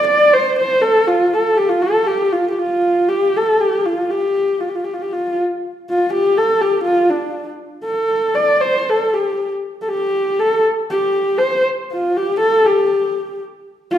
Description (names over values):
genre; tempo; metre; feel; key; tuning
mongolian traditional, Mongolian folk; 119 BPM; 4/4; straight; F gong mode; A4 = 442 Hz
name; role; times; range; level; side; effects
dark horsehead fiddle; solo; 0.0-14.0 s; D4 to D5; -14 LUFS; equal; none
room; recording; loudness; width
wet recital hall reverb, RT60 1.4 s; minimal, uncompressed stereo recording; -14 LUFS; side -10 dB against mid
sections
0.0-5.6 A section; 5.6-14.0 B section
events
none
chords
none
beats
0.08 0.58 1.08 | 1.58 2.09 2.59 3.09 | 3.60 4.10 4.60 5.10 | 5.61 6.11 6.61 7.11 | 7.62 8.12 8.62 9.12 | 9.62 10.12 10.63 11.13 | 11.63 12.13 12.64 13.14 | 13.64